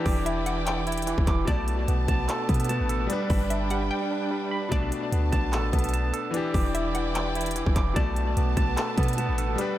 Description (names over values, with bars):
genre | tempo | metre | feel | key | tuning
hip hop, trap | 148 BPM | 4/4 | half-time | B minor | A4 = 442 Hz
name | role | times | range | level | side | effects
bright concert grand piano | accompaniment | 0.0-9.8 s | B2 to D5 | -31 LUFS | left 5 dB | dub echo
warm studio string section | sustained chords | 0.0-9.8 s | D4 to A5 | -36 LUFS | left 2 dB | none
barky tine electric piano | arpeggios | 0.0-9.8 s | E3 to D6 | -30 LUFS | right 4 dB | medium tremolo, dub echo
clean 808-style bass | bass | 0.1-9.6 s | E1 to B2 | -28 LUFS | equal | none
trap drum kit | drums | 0.1-9.7 s | handclaps, hi-hat, kick drum | -27 LUFS | equal | none
hollow square pluck | second line | 0.3-9.1 s | D5 to G5 | -38 LUFS | left 2 dB | chorus, dub echo
room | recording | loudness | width
little or no reverb | echo-heavy mix | -23 LUFS | side -13 dB against mid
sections
0.0-9.8 A section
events
break 3.9-4.7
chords
0.0 Em7; 1.5 Bm7; 3.1 G; 4.7 Bm7; 6.3 Em7; 8.0 Bm7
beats
0.26 0.67 1.07 | 1.48 1.88 2.29 2.69 | 3.10 3.50 3.91 4.31 | 4.72 5.12 5.53 5.93 | 6.34 6.75 7.15 7.56 | 7.96 8.37 8.77 9.18 | 9.58